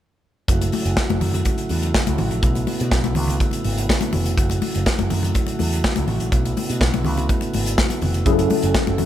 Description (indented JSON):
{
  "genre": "disco",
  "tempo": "124 BPM",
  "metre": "4/4",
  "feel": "straight",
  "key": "unclear",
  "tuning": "A4 = 440 Hz",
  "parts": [
    { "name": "mellow tonewheel organ", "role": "sustained chords", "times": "0.5-9.1 s", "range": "C#3 to F#4", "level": "-26 LUFS", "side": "right 2 dB", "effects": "slow rotary speaker" },
    { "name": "picked electric bass with an envelope filter", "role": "bass", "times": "0.5-9.1 s", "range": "F1 to B2", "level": "-23 LUFS", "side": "equal", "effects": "none" },
    { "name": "modern studio drum kit", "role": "drums", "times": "0.5-9.1 s", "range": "hi-hat, kick drum, snare drum", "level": "-21 LUFS", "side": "equal", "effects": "none" },
    { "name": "congas", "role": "percussion", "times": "0.5-9.1 s", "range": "none", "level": "-27 LUFS", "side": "left 4 dB", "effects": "none" },
    { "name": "mellow tine electric piano", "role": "accompaniment", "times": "8.3-9.1 s", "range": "F#3 to A4", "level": "-19 LUFS", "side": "left 2 dB", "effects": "medium stereo tremolo" }
  ],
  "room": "little or no reverb",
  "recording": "none",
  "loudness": "-18 LUFS",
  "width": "side -11 dB against mid",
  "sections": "0.5-9.1 A section",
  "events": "none",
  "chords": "0.5 F#m7; 2.4 B9sus4; 4.4 F#m7; 6.3 B9sus4; 8.3 F#m7",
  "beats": "| 0.48 0.97 1.46 1.94 | 2.43 2.92 3.40 3.89 | 4.37 4.86 5.35 5.83 | 6.32 6.80 7.29 7.77 | 8.26 8.74"
}